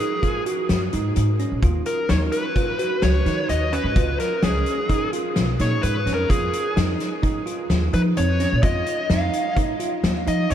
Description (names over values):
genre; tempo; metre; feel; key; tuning
progressive instrumental, band music in an uneven meter; 128 BPM; 5/4; straight; unclear; A4 = 441 Hz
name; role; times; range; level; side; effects
dark smooth lead guitar; melody; 0.0-10.5 s; G#4 to E#5; -25 LUFS; left 1 dB; overdrive, diffuse ambient delay
bell-like tine electric piano; arpeggios; 0.0-10.5 s; C#4 to F#4; -27 LUFS; right 4 dB; fast stereo tremolo
loose indie drum kit; drums; 0.0-10.5 s; hi-hat, kick drum, snare drum; -25 LUFS; left 1 dB; none
upright bass; bass; 0.7-10.5 s; A#1 to E#3; -22 LUFS; equal; none
room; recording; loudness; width
moderate huge ambient reverb, RT60 8.2 s; dreamy mix soaked in reverb; -19 LUFS; side -10 dB against mid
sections
0.0-10.5 A section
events
lead electric guitar solo 0.0-10.5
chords
0.0 G#7(no3); 1.6 D#m7; 4.0 C#7; 6.3 D#sus2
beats
0.23 0.69 1.16 | 1.63 2.09 2.56 3.03 3.49 | 3.96 4.43 4.89 5.36 5.83 | 6.30 6.76 7.23 7.70 8.16 | 8.63 9.10 9.57 10.04 10.50